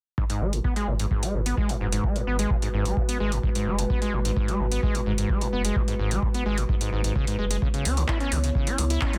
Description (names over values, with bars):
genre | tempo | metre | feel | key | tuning
acid house | 129 BPM | 4/4 | straight | G# minor | A4 = 440 Hz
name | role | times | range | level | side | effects
dark analog pad | sustained chords | 0.8-9.2 s | G#3 to C#5 | -35 LUFS | equal | chorus, sidechain pumping
overdriven acid bass | riff | 0.2-9.2 s | G#2 to E4 | -31 LUFS | equal | lush chorus, sidechain pumping, dub echo
electronic kick drum | drums | 0.2-9.1 s | none | -29 LUFS | equal | none
electro analog drum machine | drums | 0.3-9.2 s | handclaps, hi-hat | -34 LUFS | equal | none
saturated sub bass | bass | 0.4-9.0 s | F#1 to C#2 | -29 LUFS | equal | tube saturation, sidechain pumping
room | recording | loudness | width
light reverb | dense, heavily limited modern master | -25 LUFS | mono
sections
0.2-9.2 A section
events
none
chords
0.2 G#m7; 7.6 C#m7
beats
| 0.18 0.64 1.11 1.57 | 2.04 2.50 2.97 3.44 | 3.90 4.37 4.83 5.29 | 5.76 6.22 6.69 7.16 | 7.62 8.09 8.55 9.02